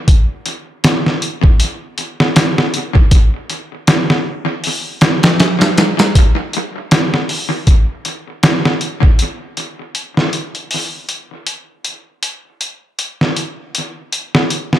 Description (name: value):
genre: trip hop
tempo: 79 BPM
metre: 4/4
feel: swing 57% on 16ths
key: none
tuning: none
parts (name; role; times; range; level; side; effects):
- trip hop sampler-style drum kit; drums; 0.1-14.8 s; hi-hat, kick drum, snare drum; -12 LUFS; equal; tape echo
room: light reverb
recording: echo-heavy mix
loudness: -13 LUFS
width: side -12 dB against mid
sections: 0.0-9.2 A section; 9.2-14.8 B section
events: none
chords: none